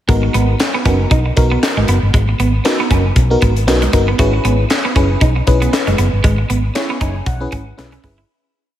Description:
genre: early-eighties boogie funk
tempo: 117 BPM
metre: 4/4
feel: swing 56% on 16ths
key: G# minor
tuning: A4 = 440 Hz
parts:
  - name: FM electric piano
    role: accompaniment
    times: 0.1-8.3 s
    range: B3 to G#5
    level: -19 LUFS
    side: left 1 dB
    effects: chorus, phaser
  - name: electric guitar at the edge of break-up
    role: riff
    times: 0.1-8.3 s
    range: G#3 to F#4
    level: -21 LUFS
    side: right 4 dB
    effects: analog chorus
  - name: hollow-body short-scale fingered electric bass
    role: bass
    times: 0.1-8.2 s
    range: F#1 to B1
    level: -15 LUFS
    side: equal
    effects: none
  - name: tight funk drum kit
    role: drums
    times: 0.1-8.2 s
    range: handclaps, hi-hat, kick drum, snare drum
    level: -17 LUFS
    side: equal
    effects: none
room: light reverb, small room ambience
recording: none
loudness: -12 LUFS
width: side -12 dB against mid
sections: 0.1-8.3 verse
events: fade-out 6.2-8.3; FM electric piano fill 6.8-8.3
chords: 0.1 G#m9; 4.2 F#9sus4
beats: | 0.09 0.60 1.11 1.63 | 2.14 2.65 3.17 3.68 | 4.19 4.70 5.22 5.73 | 6.24 6.75 7.27 7.78

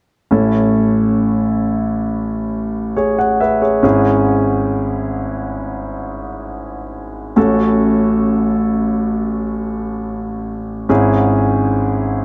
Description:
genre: pop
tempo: 68 BPM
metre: 4/4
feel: straight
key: A major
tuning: A4 = 440 Hz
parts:
  - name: clear concert grand piano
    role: accompaniment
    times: 0.3-12.2 s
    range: G#1 to F#5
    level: -17 LUFS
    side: equal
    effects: none
room: light reverb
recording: dark, warm production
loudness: -17 LUFS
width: mono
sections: 0.3-12.2 A section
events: none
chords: 0.3 A; 3.8 E6/G#; 7.4 F#m/A; 10.9 C#m/G#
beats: | 0.31 1.19 2.07 2.96 | 3.84 4.72 5.60 6.48 | 7.37 8.25 9.13 10.01 | 10.90 11.78

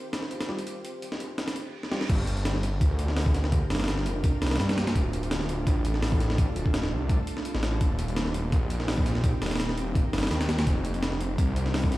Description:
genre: drum and bass, jungle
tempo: 168 BPM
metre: 4/4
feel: swing 54% on 16ths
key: G minor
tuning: A4 = 440 Hz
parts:
  - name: ethereal airy pad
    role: sustained chords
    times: 0.0-12.0 s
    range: G3 to C5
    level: -35 LUFS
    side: equal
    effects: ensemble chorus, built-in reverb
  - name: breakbeat sampler-style drum kit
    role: drums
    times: 0.1-12.0 s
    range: crash cymbal, hi-hat, kick drum, snare drum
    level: -27 LUFS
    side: equal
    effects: none
  - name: barky tine electric piano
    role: stabs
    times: 0.5-2.0 s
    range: G3 to G4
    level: -40 LUFS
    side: equal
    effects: none
  - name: reverse cymbal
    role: sound effects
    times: 1.6-2.1 s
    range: none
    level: -43 LUFS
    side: right 4 dB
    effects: none
  - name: detuned saw bass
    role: bass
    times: 2.1-12.0 s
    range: D1 to G2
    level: -28 LUFS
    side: equal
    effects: none
room: little or no reverb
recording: played on a big sound system in a bare room, stone room reverb, vinyl crackle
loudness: -24 LUFS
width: side -17 dB against mid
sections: 0.0-2.1 A section; 2.1-12.0 B section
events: filter sweep on ambient pad 0.0-2.1; filter sweep on tine electric piano 0.0-2.1; reverse cymbal 1.6-2.1; drum fill 1.8; drop 2.1-12.0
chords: 0.0 Fsus2; 2.1 Gm7; 5.0 Dm; 7.8 Cm7/Eb; 10.7 Fsus2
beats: 0.31 | 0.67 1.02 1.38 1.74 | 2.10 2.45 2.81 3.17 | 3.52 3.88 4.24 4.60 | 4.95 5.31 5.67 6.03 | 6.38 6.74 7.10 7.45 | 7.81 8.17 8.53 8.88 | 9.24 9.60 9.95 10.31 | 10.67 11.03 11.38 11.74

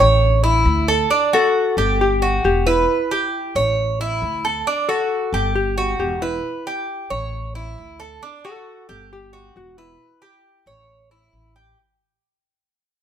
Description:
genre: latin, Cuban son and guajira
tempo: 135 BPM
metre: 4/4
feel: straight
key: D major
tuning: A4 = 441 Hz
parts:
  - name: hollow-body jazz guitar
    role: melody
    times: 0.0-11.5 s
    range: E4 to A4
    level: -22 LUFS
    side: left 4 dB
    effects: none
  - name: Cuban tres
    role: arpeggios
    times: 0.0-11.8 s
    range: D4 to C#5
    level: -19 LUFS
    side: right 2 dB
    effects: none
  - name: upright bass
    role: bass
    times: 0.0-11.7 s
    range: E1 to D2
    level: -21 LUFS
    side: equal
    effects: none
room: light reverb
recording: band playing live in one room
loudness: -17 LUFS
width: side -9 dB against mid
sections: 0.0-11.8 A section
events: fade-out 0.0-11.8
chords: 0.2 A; 1.1 D; 2.0 Gmaj7; 2.9 Em; 3.8 A; 4.7 D; 5.6 Gmaj7; 6.4 Em; 7.3 A; 8.2 D; 9.1 Gmaj7; 10.0 Em; 10.9 A7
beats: 0.22 0.66 | 1.11 1.55 2.00 2.44 | 2.89 3.33 3.78 4.22 | 4.67 5.11 5.56 6.00 | 6.45 6.89 7.33 7.78 | 8.22 8.67 9.11 9.55 | 10.00 10.44 10.89 11.33

